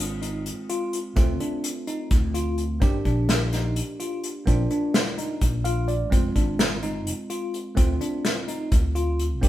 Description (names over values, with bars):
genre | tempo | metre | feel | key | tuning
progressive instrumental, band music in an uneven meter | 254 BPM (eighths) | 7/8 | straight | unclear | A4 = 440 Hz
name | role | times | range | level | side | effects
tine electric piano | accompaniment | 0.0-9.5 s | Ab3 to F5 | -31 LUFS | right 2 dB | overdrive
bell-like tine electric piano | arpeggios | 0.0-9.5 s | C4 to F4 | -31 LUFS | left 2 dB | medium stereo tremolo
mellow fretless electric bass | bass | 0.0-9.5 s | F1 to D2 | -26 LUFS | equal | none
unplugged drum kit | drums | 0.2-9.5 s | hi-hat, kick drum, snare drum | -23 LUFS | equal | none
room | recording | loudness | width
light reverb | band playing live in one room | -22 LUFS | side -14 dB against mid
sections
0.0-9.5 A section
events
tine electric piano fill 5.4-6.1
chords
0.0 Fm; 1.2 Dm7; 2.8 Gm; 4.5 Bb; 6.1 Fm; 7.8 Dm7